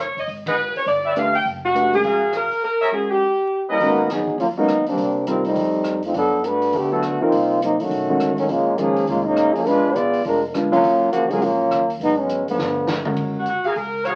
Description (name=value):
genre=jazz, big band swing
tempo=205 BPM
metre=4/4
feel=swing 62% on 8ths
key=F# major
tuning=A4 = 435 Hz
part: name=warm saxophone section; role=melody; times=0.0-3.7, 13.4-14.2 s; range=F#4 to G5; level=-22 LUFS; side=equal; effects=none
part: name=upright bass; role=bass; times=0.0-14.2 s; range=E#1 to G2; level=-39 LUFS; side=equal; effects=none
part: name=swinging big-band drum kit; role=drums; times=0.2-14.1 s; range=hi-hat, kick drum, ride cymbal, rim click, snare drum, toms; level=-36 LUFS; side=equal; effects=none
part: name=mellow trumpet section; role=stabs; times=0.5-4.1, 13.6-14.2 s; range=F#4 to F#5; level=-26 LUFS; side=equal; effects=none
part: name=warm grand piano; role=accompaniment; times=1.2-13.4 s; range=D#3 to B4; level=-26 LUFS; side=equal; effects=none
part: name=warm trombone section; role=second line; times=3.7-13.0 s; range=C#3 to D5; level=-21 LUFS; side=equal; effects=none
room=wet club reverb, RT60 0.6 s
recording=very old 78 rpm record, vinyl crackle, nothing above 10.8 kHz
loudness=-20 LUFS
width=mono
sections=0.0-3.8 A section; 3.8-13.2 B section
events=band accent 0.4; trombone section solo 3.8-13.2; drum fill 12.6-13.2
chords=0.3 G#m7; 0.9 G; 1.5 F#maj9; 2.6 A#m7b5; 3.2 D#; 3.8 G#m9; 5.0 Cm7; 5.6 F9; 6.1 Gmaj9; 7.3 Cm7b5; 7.9 B9; 8.5 A#m7; 9.7 A#7b9; 10.8 D#m9; 12.0 G#m7; 12.6 G9; 13.2 F#maj9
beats=| 0.28 0.57 0.87 1.16 | 1.45 1.75 2.04 2.33 | 2.63 2.92 3.21 3.51 | 3.80 4.09 4.39 4.68 | 4.97 5.27 5.56 5.85 | 6.15 6.44 6.73 7.03 | 7.32 7.61 7.91 8.20 | 8.49 8.79 9.08 9.37 | 9.66 9.96 10.25 10.54 | 10.84 11.13 11.42 11.71 | 12.01 12.30 12.59 12.89 | 13.18 13.47 13.77 14.06